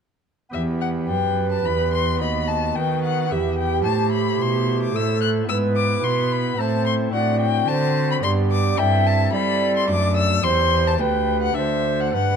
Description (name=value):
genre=classical, baroque-style sonata movement with continuo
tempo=109 BPM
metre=3/4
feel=straight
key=E minor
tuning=A4 = 441 Hz
part: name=rich violin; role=melody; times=0.5-12.4 s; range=E5 to F#6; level=-24 LUFS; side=left 8 dB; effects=none
part: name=chamber organ, cornet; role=accompaniment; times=0.5-12.4 s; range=D2 to C5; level=-26 LUFS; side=left 1 dB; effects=none
part: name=rich cello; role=bass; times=0.5-12.4 s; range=D2 to G3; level=-23 LUFS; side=equal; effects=none
part: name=mellow hollow silver concert flute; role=second line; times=1.1-12.4 s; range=G4 to E5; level=-24 LUFS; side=right 6 dB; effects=none
room=moderate recital hall reverb, RT60 1.3 s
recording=dark, warm production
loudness=-18 LUFS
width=side -7 dB against mid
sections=0.5-12.4 A section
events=none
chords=0.5 Em; 2.2 B/D#; 3.3 Em; 3.9 Am; 5.5 E/G#; 6.6 Am; 7.1 D7/A; 8.2 G; 8.8 Am7/G; 9.9 D/F#; 10.4 C/E; 11.0 G/D; 11.6 D5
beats=| 0.54 1.09 1.65 | 2.21 2.77 3.31 | 3.86 4.40 4.95 | 5.49 6.04 6.58 | 7.13 7.68 8.23 | 8.79 9.34 9.89 | 10.45 11.00 11.56 | 12.14